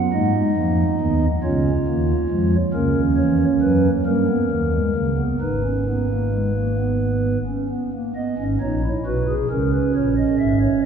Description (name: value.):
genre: classical, baroque-style 4-part fugue for pipe organ.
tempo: 45 BPM (dotted quarters).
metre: 6/8.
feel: straight.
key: G# minor.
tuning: A4 = 439 Hz.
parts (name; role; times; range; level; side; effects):
pipe organ, stopped flute; solo; 0.0-10.9 s; G#1 to E5; -18 LUFS; right 1 dB; none.
room: wet cathedral reverb, RT60 4.3 s.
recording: recorded in a church or concert hall.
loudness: -18 LUFS.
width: side -7 dB against mid.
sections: 0.0-8.2 A section; 8.2-10.9 B section.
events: none.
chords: 0.1 G#m; 1.4 C#; 2.7 A#dim/C#; 4.1 D#7; 5.4 G#m; 9.5 A#dim.